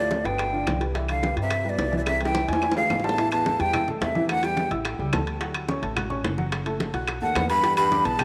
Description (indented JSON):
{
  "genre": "Afro-Cuban jazz",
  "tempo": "215 BPM",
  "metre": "4/4",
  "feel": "straight",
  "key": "C major",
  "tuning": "A4 = 440 Hz",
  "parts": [
    { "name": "breathy jazz flute", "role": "melody", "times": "0.0-4.7, 7.2-8.2 s", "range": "D5 to B5", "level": "-27 LUFS", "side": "equal", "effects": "none" },
    { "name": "dark baritone saxophone", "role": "second line", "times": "0.0-4.7, 7.2-8.2 s", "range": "C2 to E3", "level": "-35 LUFS", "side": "equal", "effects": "none" },
    { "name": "warm upright piano", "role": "accompaniment", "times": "0.0-8.2 s", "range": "B2 to G6", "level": "-32 LUFS", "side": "equal", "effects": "none" },
    { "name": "upright bass", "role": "bass", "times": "0.0-8.2 s", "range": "F#1 to G2", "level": "-34 LUFS", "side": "equal", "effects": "none" },
    { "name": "bongos", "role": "percussion", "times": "0.1-8.2 s", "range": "none", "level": "-35 LUFS", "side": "equal", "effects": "none" },
    { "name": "congas", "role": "percussion", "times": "0.1-8.2 s", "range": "none", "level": "-36 LUFS", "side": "equal", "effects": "none" },
    { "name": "timbales", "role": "percussion", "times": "0.3-8.2 s", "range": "none", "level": "-38 LUFS", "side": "equal", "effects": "none" },
    { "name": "claves", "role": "percussion", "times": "0.4-8.2 s", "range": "none", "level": "-39 LUFS", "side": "equal", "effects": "none" }
  ],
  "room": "moderate plate reverb, RT60 3.7 s",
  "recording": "none",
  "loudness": "-25 LUFS",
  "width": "mono",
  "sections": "0.0-3.2 A section; 3.2-8.2 B section",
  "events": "drum fill 2.1-3.2",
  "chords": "0.4 G7; 0.9 Cmaj9; 2.6 E7b9; 3.2 A7(no3); 4.9 A7; 5.4 Dmaj7; 6.5 F#madd11; 7.1 B7; 7.6 Em7"
}